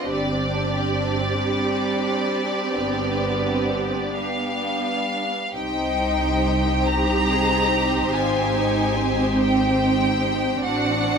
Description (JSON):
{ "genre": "classical, slow romantic movement for string orchestra", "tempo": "42-50 BPM (dotted quarters)", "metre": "12/8", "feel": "rubato", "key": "unclear", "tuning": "A4 = 440 Hz", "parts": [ { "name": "rich studio violin section", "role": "melody", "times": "0.0-11.2 s", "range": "D5 to Bb5", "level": "-26 LUFS", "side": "left 1 dB", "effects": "none" }, { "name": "rich studio violin section", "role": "second line", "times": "0.0-11.2 s", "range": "G3 to D5", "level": "-27 LUFS", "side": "left 2 dB", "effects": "none" }, { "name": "warm studio viola section", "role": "accompaniment", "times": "0.0-11.2 s", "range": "B3 to Eb4", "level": "-25 LUFS", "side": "right 2 dB", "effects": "none" }, { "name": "warm studio cello section", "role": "bass", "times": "0.0-11.2 s", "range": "C4 to Ab4", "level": "-27 LUFS", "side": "right 2 dB", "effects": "none" }, { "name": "rich studio double bass section", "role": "bass", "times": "0.1-11.2 s", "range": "G1 to C2", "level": "-27 LUFS", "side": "equal", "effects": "none" } ], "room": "light reverb", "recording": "minimal, uncompressed stereo recording", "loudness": "-19 LUFS", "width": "side -6 dB against mid", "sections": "0.0-11.2 A section", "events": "none", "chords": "0.1 Gsus4; 2.8 G; 5.5 Cm; 8.1 Abmaj7; 10.6 D7/A" }